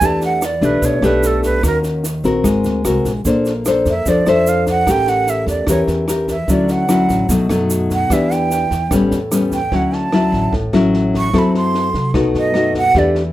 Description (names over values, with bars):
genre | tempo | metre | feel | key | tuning
bossa nova | 148 BPM | 4/4 | straight | D major | A4 = 440 Hz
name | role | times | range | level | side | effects
breathy jazz flute | melody | 0.0-13.2 s | A4 to C#6 | -18 LUFS | right 4 dB | none
nylon-string guitar | accompaniment | 0.0-13.3 s | A2 to C5 | -15 LUFS | left 2 dB | none
upright bass | bass | 0.0-13.3 s | G#1 to C3 | -23 LUFS | right 1 dB | none
compact cocktail drum kit | drums | 0.0-13.2 s | kick drum, rim click, snare drum | -25 LUFS | right 1 dB | none
tube shaker | percussion | 0.0-9.7 s | none | -29 LUFS | right 5 dB | none
room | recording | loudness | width
moderate studio reverb, RT60 0.7 s | rough home demo mix | -13 LUFS | side -14 dB against mid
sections
0.0-9.7 A section; 9.7-13.3 A section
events
flute solo 0.0-13.3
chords
0.0 Em7; 1.6 Ebm7; 2.4 G#9; 3.2 Bbmaj9; 4.9 A7b9; 6.5 Dmaj9; 7.3 B7; 8.1 Em7; 8.9 A9; 9.7 Dmaj9; 11.3 F#m7b5; 12.1 B7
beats
| 0.01 0.41 0.82 1.23 | 1.63 2.04 2.44 2.84 | 3.25 3.65 4.06 4.46 | 4.87 5.27 5.68 6.08 | 6.48 6.89 7.29 7.70 | 8.10 8.51 8.91 9.31 | 9.72 10.12 10.53 10.93 | 11.34 11.74 12.15 12.55 | 12.96